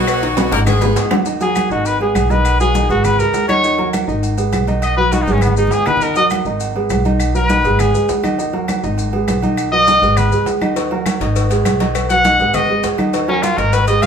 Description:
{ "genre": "latin, salsa", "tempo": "202 BPM", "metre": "4/4", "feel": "straight", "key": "unclear", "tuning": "A4 = 436 Hz", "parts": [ { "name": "brilliant horn section", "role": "melody", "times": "0.0-1.1 s", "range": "Gb3 to Bb4", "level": "-19 LUFS", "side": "left 3 dB", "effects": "none" }, { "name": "dark concert grand piano", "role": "accompaniment", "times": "0.0-14.1 s", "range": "Eb3 to Eb6", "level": "-19 LUFS", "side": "right 2 dB", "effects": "none" }, { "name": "upright bass", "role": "bass", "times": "0.0-14.1 s", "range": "Ab1 to Eb2", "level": "-20 LUFS", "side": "equal", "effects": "none" }, { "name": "agogo bells and timbales", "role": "percussion", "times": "0.1-14.1 s", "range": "none", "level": "-24 LUFS", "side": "right 7 dB", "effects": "none" }, { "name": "claves", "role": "percussion", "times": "0.1-14.1 s", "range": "none", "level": "-32 LUFS", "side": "left 3 dB", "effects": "none" }, { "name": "congas", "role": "percussion", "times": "0.1-14.1 s", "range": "none", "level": "-23 LUFS", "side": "equal", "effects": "none" }, { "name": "cowbell and bongos", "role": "percussion", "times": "0.1-1.2, 10.8-14.1 s", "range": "none", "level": "-23 LUFS", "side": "left 6 dB", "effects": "none" }, { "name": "maracas", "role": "percussion", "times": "0.1-14.1 s", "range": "none", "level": "-33 LUFS", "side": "left 7 dB", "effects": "none" }, { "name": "clear trumpet", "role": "melody", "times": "1.4-14.1 s", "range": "Cb4 to F#5", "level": "-16 LUFS", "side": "left 2 dB", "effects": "none" } ], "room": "moderate large studio reverb, RT60 1.1 s", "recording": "band playing live in one room", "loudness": "-13 LUFS", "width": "side -7 dB against mid", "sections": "0.0-1.3 A section; 1.3-14.1 B section", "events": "drum fill 0.4-1.3, 5.3-6.0; trumpet solo 1.3-14.1", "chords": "0.1 Abm; 1.3 Ebm; 1.9 Abm; 2.5 B; 3.0 Abm; 3.6 Ebm7; 4.2 Abm; 4.8 B; 5.4 Abm; 6.0 Ebm; 6.6 Abm; 7.2 B; 7.8 Abm; 8.4 Ebm; 9.0 Abm; 9.6 B; 10.2 Abm; 10.8 Ebm; 11.4 Abm; 11.9 B; 12.5 Abm; 13.1 Ebm" }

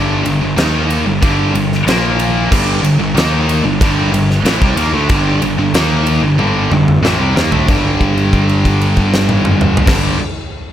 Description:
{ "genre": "hard rock", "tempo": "93 BPM", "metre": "4/4", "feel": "straight", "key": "G minor", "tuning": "A4 = 439 Hz", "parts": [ { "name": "high-gain distorted guitar", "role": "riff", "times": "0.0-10.2 s", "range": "G2 to Eb4", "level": "-14 LUFS", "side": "equal", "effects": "distortion" }, { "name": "fuzz picked electric bass", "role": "bass", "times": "0.0-10.1 s", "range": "G1 to Eb2", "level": "-17 LUFS", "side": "equal", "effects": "overdrive" }, { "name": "huge arena drum kit", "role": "drums", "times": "0.3-10.0 s", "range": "crash cymbal, kick drum, ride cymbal, snare drum, toms", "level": "-16 LUFS", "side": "equal", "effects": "none" } ], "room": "light reverb", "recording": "none", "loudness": "-11 LUFS", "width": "side -11 dB against mid", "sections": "0.0-7.7 A section; 7.7-10.3 B section", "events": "drum fill 6.4-7.7; held note 7.7-9.9", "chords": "0.0 Gm; 1.9 Bb5; 2.5 Gm; 7.7 G5" }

